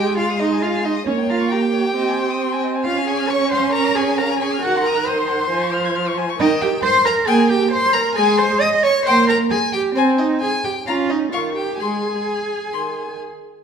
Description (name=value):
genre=quick classical-period movement for string quartet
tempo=134 BPM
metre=4/4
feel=straight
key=Ab major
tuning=A4 = 440 Hz
part: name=rich violin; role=melody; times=0.0-12.9 s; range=Db5 to Ab6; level=-26 LUFS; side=left 9 dB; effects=none
part: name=warm violin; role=second line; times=0.0-13.2 s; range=C5 to Eb6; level=-23 LUFS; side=left 4 dB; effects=none
part: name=warm viola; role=accompaniment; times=0.0-13.1 s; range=Eb3 to Db4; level=-21 LUFS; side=right 3 dB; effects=none
part: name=warm cello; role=bass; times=0.0-13.2 s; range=C4 to Eb5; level=-20 LUFS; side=right 3 dB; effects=none
room=wet recital hall reverb, RT60 1.4 s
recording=minimal, uncompressed stereo recording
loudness=-16 LUFS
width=side -7 dB against mid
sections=0.0-13.6 A section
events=none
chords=0.0 Ab; 1.1 Gdim/Bb; 2.0 Ab/C; 2.9 Db; 4.6 Cdim/Eb; 5.5 Db/F; 6.4 Eb; 8.2 Ab; 9.1 Abmaj9/Bb; 10.0 Ab/C; 10.9 Bbm/Db; 11.3 Eb9; 11.8 Ab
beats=0.17 0.62 | 1.07 1.51 1.96 2.40 | 2.85 3.29 3.73 4.18 | 4.62 5.06 5.50 5.95 | 6.39 6.83 7.28 7.72 | 8.16 8.61 9.06 9.51 | 9.96 10.42 10.87 11.33 | 11.79 12.26 12.72 13.19